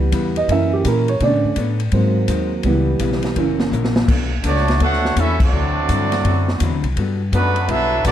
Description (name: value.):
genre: jazz, big band swing.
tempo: 167 BPM.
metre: 4/4.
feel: swing 64% on 8ths.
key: B minor.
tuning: A4 = 439 Hz.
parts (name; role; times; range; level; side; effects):
archtop guitar, miked and amplified; accompaniment; 0.0-8.1 s; C#3 to C#5; -26 LUFS; left 8 dB; none.
dark grand piano; accompaniment; 0.0-3.6 s; D3 to E5; -19 LUFS; right 4 dB; none.
upright bass; bass; 0.0-8.1 s; F#1 to B2; -20 LUFS; left 1 dB; none.
swinging big-band drum kit; drums; 0.1-8.1 s; crash cymbal, hi-hat, kick drum, ride cymbal, snare drum; -23 LUFS; left 1 dB; none.
muted trombone section; second line; 4.4-8.1 s; D3 to F#4; -24 LUFS; right 3 dB; none.
clear trumpet section; melody; 4.5-8.1 s; A3 to F#5; -20 LUFS; right 2 dB; none.
room: light reverb.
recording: dark, warm production.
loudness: -15 LUFS.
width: side -11 dB against mid.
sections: 0.0-4.1 A section; 4.1-8.1 B section.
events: grand piano solo 0.0-4.1; drum fill 3.7-4.1; band accent 5.3.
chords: 0.5 F#7; 1.2 Bm9; 1.9 G#7; 2.6 C#m7b5; 3.4 F#7; 4.1 Bm9; 5.5 D9; 7.0 Gmaj9.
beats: 0.13 0.49 0.85 | 1.21 1.57 1.93 2.29 | 2.65 3.01 3.37 3.73 | 4.09 4.45 4.81 5.17 | 5.53 5.89 6.25 6.61 | 6.97 7.33 7.69 8.05.